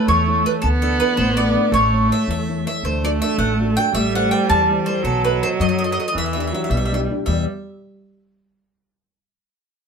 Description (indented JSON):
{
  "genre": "italian folk, Italian serenade",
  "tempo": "109 BPM (dotted quarters)",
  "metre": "6/8",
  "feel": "straight",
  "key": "E minor",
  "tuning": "A4 = 440 Hz",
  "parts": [
    { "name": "bowl-back mandolin", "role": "melody", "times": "0.0-7.4 s", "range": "A4 to A5", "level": "-20 LUFS", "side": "right 1 dB", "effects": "plate reverb" },
    { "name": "clear viola", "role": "second line", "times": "0.0-7.4 s", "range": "E3 to B3", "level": "-23 LUFS", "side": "right 4 dB", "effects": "none" },
    { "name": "nylon-string guitar", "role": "accompaniment", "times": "0.0-7.5 s", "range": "E2 to D#5", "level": "-23 LUFS", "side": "left 3 dB", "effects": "none" },
    { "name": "upright bass", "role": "bass", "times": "0.1-7.4 s", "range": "A1 to F#2", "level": "-23 LUFS", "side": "equal", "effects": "none" }
  ],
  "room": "moderate small room reverb, RT60 0.5 s",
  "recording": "none",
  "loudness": "-16 LUFS",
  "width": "side -6 dB against mid",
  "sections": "0.0-7.3 A section; 7.3-8.4 B section",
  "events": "none",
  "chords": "0.0 A; 0.6 Dsus2; 1.7 A; 2.8 D; 3.9 Am; 5.0 B7; 6.2 Em7",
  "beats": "0.09 | 0.64 1.19 | 1.74 2.29 | 2.84 3.40 | 3.95 4.50 | 5.05 5.60 | 6.15 6.71 | 7.26"
}